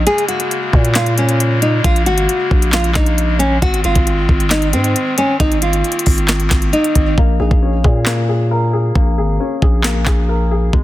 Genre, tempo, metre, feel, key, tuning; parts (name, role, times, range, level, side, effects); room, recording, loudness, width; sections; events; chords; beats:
hip hop, trap; 135 BPM; 4/4; half-time; Bb minor; A4 = 435 Hz
nylon-string guitar; melody; 0.0-7.1 s; C4 to Ab4; -17 LUFS; equal; digital delay
pipe organ, clarinet reed; sustained chords; 0.0-7.2 s; Db3 to C4; -23 LUFS; left 2 dB
growling 808-style bass; bass; 0.0-10.8 s; Ab1 to Bb2; -16 LUFS; equal
trap drum kit; drums; 0.1-10.8 s; handclaps, hi-hat, kick drum, snare drum; -15 LUFS; equal
warm grand piano; accompaniment; 7.2-10.8 s; Ab3 to Bb4; -20 LUFS; left 4 dB; low-pass filter
small room ambience; dense, heavily limited modern master; -12 LUFS; side -15 dB against mid
0.0-7.2 A section; 7.2-10.8 B section
break 0.1-0.5; hi-hats muted 7.2-10.8
0.1 Bbm7; 3.6 Ab; 7.2 Bbm7
| 0.07 0.51 0.95 1.40 | 1.84 2.29 2.73 3.18 | 3.62 4.07 4.51 4.96 | 5.40 5.84 6.29 6.73 | 7.18 7.62 8.07 8.51 | 8.96 9.40 9.84 10.29 | 10.73